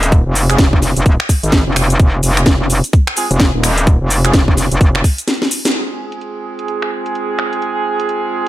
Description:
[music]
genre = bass house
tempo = 128 BPM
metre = 4/4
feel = swing 60% on 16ths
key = F minor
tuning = A4 = 441 Hz
[part]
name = metallic wobble bass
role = bass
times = 0.0-5.0 s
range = Eb1 to Ab1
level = -14 LUFS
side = equal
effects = chorus, sidechain pumping
[part]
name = house drum kit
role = drums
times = 0.0-8.2 s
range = crash cymbal, finger snaps, hi-hat, shaker, snare drum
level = -17 LUFS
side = equal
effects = overdrive, low-pass filter on snare, low-pass filter on hats, low-pass filter on perc, low-pass filter on cymbals, low-pass filter on room
[part]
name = electronic kick drum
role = drums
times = 0.1-5.2 s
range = none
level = -11 LUFS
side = equal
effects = overdrive
[part]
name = mellow horn section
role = stabs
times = 0.5-8.5 s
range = Ab3 to Ab4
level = -20 LUFS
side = right 3 dB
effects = sidechain pumping, low-pass filter, ping-pong delay
[sound]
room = little or no reverb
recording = none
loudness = -12 LUFS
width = side -15 dB against mid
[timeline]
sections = 0.0-5.7 A section; 5.7-8.5 B section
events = break 5.3-5.7; drum fill 5.3-5.7; band accent 5.6; filter sweep on horn section 5.7-8.5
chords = 0.0 Fm

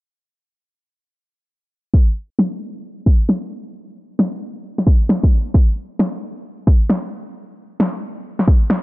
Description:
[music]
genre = UK garage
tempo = 133 BPM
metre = 4/4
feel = swing 63% on 16ths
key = none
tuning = none
[part]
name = electronic kick drum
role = drums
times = 1.9-8.6 s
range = none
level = -12 LUFS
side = equal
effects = none
[part]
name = electronic snare drum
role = drums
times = 2.4-8.8 s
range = none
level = -19 LUFS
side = equal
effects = none
[sound]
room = digital ambience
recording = low-pass filter, nothing above 10.6 kHz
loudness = -15 LUFS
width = side -19 dB against mid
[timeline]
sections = 1.9-8.8 A section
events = filter sweep 1.9-8.8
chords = none

